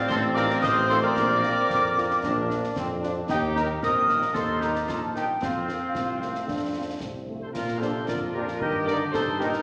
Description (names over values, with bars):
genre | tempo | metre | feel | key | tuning
military-style march for wind band | 113 BPM | 2/4 | straight | Bb major | A4 = 440 Hz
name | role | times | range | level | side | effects
warm trombone section | sustained chords | 0.0-9.5 s | Eb3 to Eb4 | -34 LUFS | equal | none
mellow trumpet section | melody | 0.1-9.6 s | F4 to Eb5 | -36 LUFS | equal | none
mellow small flute group | second line | 0.1-9.4 s | F4 to Eb6 | -30 LUFS | equal | none
warm woodwind section | second line | 0.1-9.6 s | C4 to C5 | -32 LUFS | equal | none
mellow tuba | bass | 0.1-9.5 s | A1 to Bb2 | -34 LUFS | equal | none
concert snare drum, concert bass drum and clash cymbals | drums | 0.1-9.6 s | none | -39 LUFS | equal | none
dark French horn section | accompaniment | 0.4-9.5 s | F3 to F4 | -40 LUFS | equal | none
mellow euphonium | second line | 5.9-9.5 s | Bb2 to D4 | -36 LUFS | equal | none
room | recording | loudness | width
wet scoring stage reverb, RT60 1.6 s | none | -25 LUFS | mono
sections
0.0-7.5 A section; 7.5-9.6 B section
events
none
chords
0.0 F7/A; 1.2 Bb; 3.3 Eb; 5.4 Fsus4; 6.5 F; 7.5 Bb; 8.6 Eb/G